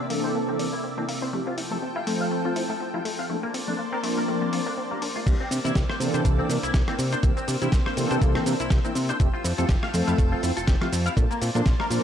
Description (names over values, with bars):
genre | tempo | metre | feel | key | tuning
nu-disco, nu disco | 122 BPM | 4/4 | swing 56% on 16ths | C mixolydian | A4 = 440 Hz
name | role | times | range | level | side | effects
lush unison pad | sustained chords | 0.0-12.0 s | C3 to E6 | -33 LUFS | left 1 dB | chorus, sidechain pumping
wide unison pluck | arpeggios | 0.0-12.0 s | A3 to G4 | -34 LUFS | left 2 dB | sidechain pumping, analog delay
semi-hollow electric guitar | riff | 0.0-11.9 s | Bb3 to F5 | -34 LUFS | left 2 dB | ensemble chorus, low-pass filter, tape echo
mellow synth brass | accompaniment | 0.1-12.0 s | E3 to C5 | -28 LUFS | equal | chorus, tape echo
dusty soul sampler-style drum kit | drums | 0.1-12.0 s | crash cymbal, hi-hat, rim click, shaker, snare drum | -32 LUFS | equal | none
fat analog bass | bass | 5.3-12.0 s | F1 to C3 | -26 LUFS | equal | none
electronic kick drum | drums | 5.3-11.8 s | none | -22 LUFS | equal | none
room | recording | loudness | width
light reverb, digital ambience | echo-heavy mix | -22 LUFS | side -9 dB against mid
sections
0.0-5.3 A section; 5.3-12.0 B section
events
drop 5.3-12.0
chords
0.0 C9; 1.3 Fmaj9; 3.3 Bbmaj9; 5.3 C9; 9.2 Fmaj9; 11.2 Bbmaj9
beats
0.35 0.84 | 1.33 1.82 2.32 2.81 | 3.30 3.79 4.28 4.78 | 5.27 5.76 6.25 6.74 | 7.23 7.73 8.22 8.71 | 9.20 9.69 10.19 10.68 | 11.17 11.66